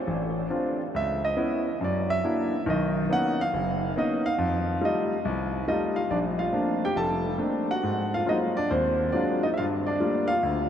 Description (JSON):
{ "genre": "solo jazz", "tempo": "139 BPM", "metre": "4/4", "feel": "swing 66% on 8ths", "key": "Bb major", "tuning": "A4 = 441 Hz", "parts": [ { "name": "clear concert grand piano", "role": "solo", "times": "0.1-10.7 s", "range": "F1 to A5", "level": "-24 LUFS", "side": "equal", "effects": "none" } ], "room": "wet huge ambient reverb, RT60 7.7 s", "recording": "in a vast, echoing space", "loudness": "-24 LUFS", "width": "side -9 dB against mid", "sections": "0.0-6.1 A section; 6.1-10.7 B section", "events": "grand piano solo 0.0-6.1", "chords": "0.0 Dm7; 0.9 Dbm7; 1.8 Gbaug7; 2.7 Bmaj9; 4.4 F9; 6.1 Bbmaj9; 7.8 Ab13; 9.6 Gm9" }